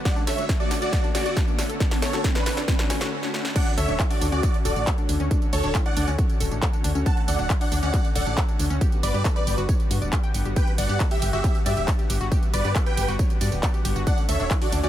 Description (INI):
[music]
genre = uplifting trance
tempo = 137 BPM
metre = 4/4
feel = straight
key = D major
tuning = A4 = 440 Hz
[part]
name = lush unison pad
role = sustained chords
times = 0.0-14.9 s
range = D3 to F#4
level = -33 LUFS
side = equal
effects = chorus, sidechain pumping
[part]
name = riser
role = sound effects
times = 0.0-3.6 s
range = none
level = -34 LUFS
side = left 1 dB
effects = none
[part]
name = big supersaw lead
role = melody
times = 0.1-14.9 s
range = D4 to A5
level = -30 LUFS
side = right 1 dB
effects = phaser, vintage 12-bit sampler grit, sidechain pumping, ping-pong delay
[part]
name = plucky unison lead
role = second line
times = 0.1-14.9 s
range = B4 to A5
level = -35 LUFS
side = equal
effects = lush chorus, sidechain pumping
[part]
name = big-room dance drum kit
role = drums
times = 0.1-14.9 s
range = crash cymbal, handclaps, hi-hat, ride cymbal, snare drum, tambourine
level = -31 LUFS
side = right 1 dB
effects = high-pass filter on hats, high-pass filter on snare, high-pass filter on perc, high-pass filter on cymbals
[part]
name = electronic kick drum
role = drums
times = 0.1-14.6 s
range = none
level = -23 LUFS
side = equal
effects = none
[part]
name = wide unison pluck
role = arpeggios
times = 0.2-14.9 s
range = A3 to G5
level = -33 LUFS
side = left 3 dB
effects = sidechain pumping, ping-pong delay
[part]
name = solid FM bass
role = bass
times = 3.8-14.9 s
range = D1 to G2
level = -26 LUFS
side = equal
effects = sidechain pumping
[sound]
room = little or no reverb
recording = none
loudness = -20 LUFS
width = side -12 dB against mid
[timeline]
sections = 0.0-3.6 A section; 3.6-14.9 B section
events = build-up 0.0-3.6; drum fill 0.0-3.1, 3.2-3.6; riser 0.0-3.6; break 3.1-3.6; drop 3.6-14.9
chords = 0.1 Dmaj7; 8.8 Gmaj7; 14.1 Dmaj7